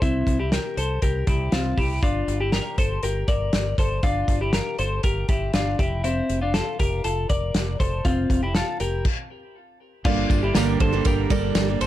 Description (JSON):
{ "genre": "jangly indie pop", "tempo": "120 BPM", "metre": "4/4", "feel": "straight", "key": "G dorian", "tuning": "A4 = 441 Hz", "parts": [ { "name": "twelve-string electric guitar", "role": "arpeggios", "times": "0.0-11.9 s", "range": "C4 to D5", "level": "-26 LUFS", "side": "left 2 dB", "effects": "digital delay" }, { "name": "fingered electric bass", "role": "bass", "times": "0.0-11.9 s", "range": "F1 to C2", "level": "-26 LUFS", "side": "equal", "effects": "none" }, { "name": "loose indie drum kit", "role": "drums", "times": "0.0-11.9 s", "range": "crash cymbal, hi-hat, kick drum, ride cymbal, snare drum", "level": "-24 LUFS", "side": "equal", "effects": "none" }, { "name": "picked steel-string acoustic guitar", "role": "accompaniment", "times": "10.0-11.9 s", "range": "G2 to A4", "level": "-24 LUFS", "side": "right 11 dB", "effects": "none" }, { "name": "tambourine", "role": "percussion", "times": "10.3-11.9 s", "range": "none", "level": "-40 LUFS", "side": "left 8 dB", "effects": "none" } ], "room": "light reverb", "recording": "dark, warm production", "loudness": "-20 LUFS", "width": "side -13 dB against mid", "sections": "0.0-10.1 A section; 10.1-11.9 B section", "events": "stop 9.1-10.1", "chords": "0.0 C7; 2.0 Gm7; 5.8 Fmaj7; 10.1 Gmadd9" }